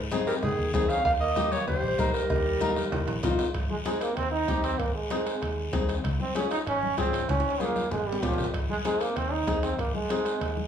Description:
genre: latin, cumbia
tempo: 192 BPM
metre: 4/4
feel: straight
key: Ab major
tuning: A4 = 442 Hz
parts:
  - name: fingered electric bass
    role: bass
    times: 0.0-10.7 s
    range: Ab1 to Ab2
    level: -33 LUFS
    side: left 1 dB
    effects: none
  - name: flamenco guitar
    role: accompaniment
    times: 0.1-10.3 s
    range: Bb3 to Bb4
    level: -31 LUFS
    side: left 5 dB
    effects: none
  - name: bombo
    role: percussion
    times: 0.1-10.6 s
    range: none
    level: -33 LUFS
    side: equal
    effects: none
  - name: congas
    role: percussion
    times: 0.1-10.7 s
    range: none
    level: -36 LUFS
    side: left 5 dB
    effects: none
  - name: cowbell and timbales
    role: percussion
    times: 0.1-10.6 s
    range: none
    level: -39 LUFS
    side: right 5 dB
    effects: none
  - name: guiro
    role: percussion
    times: 0.1-10.7 s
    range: none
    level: -42 LUFS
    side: left 5 dB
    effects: none
  - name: clear clarinet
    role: melody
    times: 0.3-3.2 s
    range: Ab4 to F5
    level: -28 LUFS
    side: right 1 dB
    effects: slapback echo
  - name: bright trombone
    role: second line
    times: 0.3-10.7 s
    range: Eb3 to Eb4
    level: -30 LUFS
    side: right 3 dB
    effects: none
room: moderate large studio reverb, RT60 0.9 s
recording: small room reverb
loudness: -25 LUFS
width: side -8 dB against mid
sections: 0.0-3.5 A section; 3.5-10.7 B section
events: drum fill 2.9-3.5, 7.3-8.5; trombone solo 3.5-10.7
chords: 0.0 Ab; 1.1 Eb; 3.5 Ab; 6.0 Db; 8.5 Ab

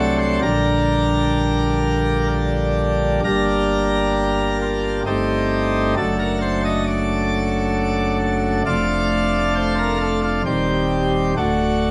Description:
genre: classical, chorale-style piece for pipe organ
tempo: 66 BPM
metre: 3/4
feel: straight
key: G minor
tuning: A4 = 440 Hz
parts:
  - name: pipe organ, plenum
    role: solo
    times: 0.0-11.9 s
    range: D1 to Eb5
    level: -20 LUFS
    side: equal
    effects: none
room: wet stone room reverb, RT60 1.2 s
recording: none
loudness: -20 LUFS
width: mono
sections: 0.0-3.2 A section; 3.2-11.9 B section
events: none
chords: 0.4 Gm/Bb; 3.2 Gm; 5.1 Am7b5/G; 6.0 D/F#; 8.7 Dm/F; 10.5 Cm/Eb; 11.4 D

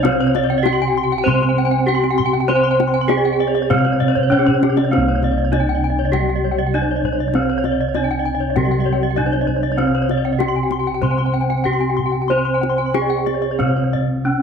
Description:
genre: Balinese gamelan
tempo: 99 BPM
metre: 4/4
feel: straight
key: C pelog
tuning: A4 = 439 Hz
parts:
  - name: gamelan-type bronze metallophone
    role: melody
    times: 0.0-14.4 s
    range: C4 to C5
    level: -20 LUFS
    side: equal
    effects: none
  - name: gamelan-type bronze metallophone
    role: accompaniment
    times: 0.0-14.4 s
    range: C3 to C4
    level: -27 LUFS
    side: right 14 dB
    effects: none
  - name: gamelan-type bronze metallophone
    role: arpeggios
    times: 0.0-13.9 s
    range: Ab4-40c to C6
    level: -25 LUFS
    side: right 14 dB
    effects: none
  - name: gamelan-type bossed gongs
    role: bass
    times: 0.0-14.4 s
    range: C2 to C5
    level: -20 LUFS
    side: equal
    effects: none
  - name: kendang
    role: percussion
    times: 0.0-14.1 s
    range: none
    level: -26 LUFS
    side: left 10 dB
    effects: none
  - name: gamelan-type bronze metallophone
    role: arpeggios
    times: 0.1-14.0 s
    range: Ab4-40c to C6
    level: -23 LUFS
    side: left 13 dB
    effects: none
room: light reverb, small room ambience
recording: 1960s-style stereo with parts hard left and right, lossy compression artefacts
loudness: -15 LUFS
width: side -6 dB against mid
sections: 0.0-14.4 A section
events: drum fill 4.2-4.9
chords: none

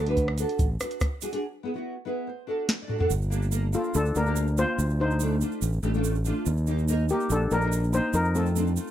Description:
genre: calypso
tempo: 143 BPM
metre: 4/4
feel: straight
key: unclear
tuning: A4 = 440 Hz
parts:
  - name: nylon-string guitar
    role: accompaniment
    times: 0.0-8.9 s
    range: A3 to F#5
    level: -30 LUFS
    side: equal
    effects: double-tracked left and right
  - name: overdriven fingered electric bass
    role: bass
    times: 0.0-8.8 s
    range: G1 to F2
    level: -25 LUFS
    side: equal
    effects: none
  - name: soft vintage rhythm box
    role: drums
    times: 0.1-3.1 s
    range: hi-hat, kick drum, rim click, snare drum, toms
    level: -28 LUFS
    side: equal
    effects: none
  - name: tube shaker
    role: percussion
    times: 0.2-8.9 s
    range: none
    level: -38 LUFS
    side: right 20 dB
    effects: none
  - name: steel pan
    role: melody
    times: 3.7-8.9 s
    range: C4 to C5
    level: -27 LUFS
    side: left 2 dB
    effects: none
room: small room ambience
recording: dry, close 1970s-style studio recording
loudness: -24 LUFS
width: side -11 dB against mid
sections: 0.0-3.1 A section; 3.1-8.9 B section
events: break 1.4-3.1; nylon-string guitar fill 1.9-3.1; drum fill 2.7-3.1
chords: 0.0 D; 1.4 E; 2.3 D; 3.1 Gm; 4.8 Dm7; 6.5 Ebmaj7; 8.1 F7

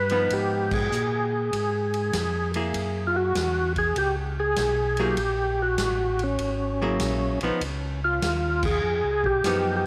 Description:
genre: soul jazz organ trio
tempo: 98 BPM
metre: 4/4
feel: swing 67% on 8ths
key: Db mixolydian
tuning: A4 = 440 Hz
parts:
  - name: percussive tonewheel organ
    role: melody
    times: 0.0-9.9 s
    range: Db4 to Cb5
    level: -27 LUFS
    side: equal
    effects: slow rotary speaker, overdrive, chorus vibrato, tape echo
  - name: mellow tonewheel organ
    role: bass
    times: 0.0-9.9 s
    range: Ab1 to Bb2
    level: -32 LUFS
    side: equal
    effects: slow rotary speaker
  - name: archtop guitar, miked and amplified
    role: accompaniment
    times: 0.1-9.9 s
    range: F3 to Ab4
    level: -31 LUFS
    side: equal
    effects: none
  - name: swinging big-band drum kit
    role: drums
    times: 0.1-9.6 s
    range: crash cymbal, hi-hat, kick drum, ride cymbal, snare drum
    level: -36 LUFS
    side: equal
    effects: none
room: moderate spring reverb, RT60 2.4 s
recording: none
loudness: -25 LUFS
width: mono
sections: 0.0-9.9 A section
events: band accent 0.6-0.9, 8.5-8.8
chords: 0.0 Db9 (rootless); 2.7 Gb9; 7.6 Db9

